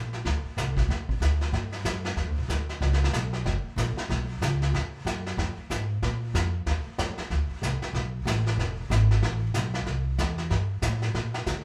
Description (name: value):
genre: jazz piano trio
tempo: 187 BPM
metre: 4/4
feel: swing 61% on 8ths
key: unclear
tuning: A4 = 441 Hz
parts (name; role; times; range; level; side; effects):
- upright bass; bass; 0.0-11.6 s; E1 to D3; -29 LUFS; equal; none
- vintage brush drum kit; drums; 0.1-11.6 s; brushed snare drum, hi-hat, kick drum, snare drum; -34 LUFS; equal; none
room: moderate large studio reverb, RT60 0.8 s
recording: band playing live in one room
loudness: -28 LUFS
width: mono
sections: 0.0-1.5 A section; 1.5-11.6 B section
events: none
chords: none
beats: | 0.25 0.57 0.89 1.21 | 1.53 1.85 2.17 2.49 | 2.81 3.13 3.46 3.78 | 4.10 4.42 4.74 5.06 | 5.38 5.70 6.02 6.34 | 6.66 6.98 7.30 7.62 | 7.94 8.27 8.59 8.91 | 9.23 9.55 9.87 10.19 | 10.51 10.83 11.15 11.47